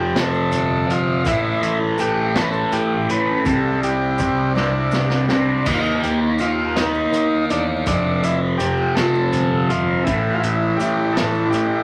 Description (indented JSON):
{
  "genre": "psychedelic rock",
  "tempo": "54 BPM (dotted quarters)",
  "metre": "6/8",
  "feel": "straight",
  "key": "unclear",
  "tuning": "A4 = 443 Hz",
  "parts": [
    { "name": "combo organ", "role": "melody", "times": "0.0-11.8 s", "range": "D4 to B4", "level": "-25 LUFS", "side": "equal", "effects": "none" },
    { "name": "fuzz guitar", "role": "riff", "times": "0.0-11.8 s", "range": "F2 to Eb4", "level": "-22 LUFS", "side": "equal", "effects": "distortion, phaser" },
    { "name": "picked electric bass", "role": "bass", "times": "0.0-11.8 s", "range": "F1 to Eb3", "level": "-31 LUFS", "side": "equal", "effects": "none" },
    { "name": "vintage drum kit", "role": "drums", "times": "0.2-11.7 s", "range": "crash cymbal, hi-hat, kick drum, snare drum", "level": "-28 LUFS", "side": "equal", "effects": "none" },
    { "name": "maracas", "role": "percussion", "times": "0.3-11.7 s", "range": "none", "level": "-50 LUFS", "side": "equal", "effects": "none" }
  ],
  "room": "moderate large studio reverb, RT60 1.3 s",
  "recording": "vinyl crackle",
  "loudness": "-19 LUFS",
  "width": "mono",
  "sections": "0.0-11.8 A section",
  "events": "drum fill 4.6-5.7",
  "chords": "0.0 Fadd9; 1.3 A5; 3.5 Csus2; 5.7 Eb5; 7.9 Fadd9; 10.1 A5"
}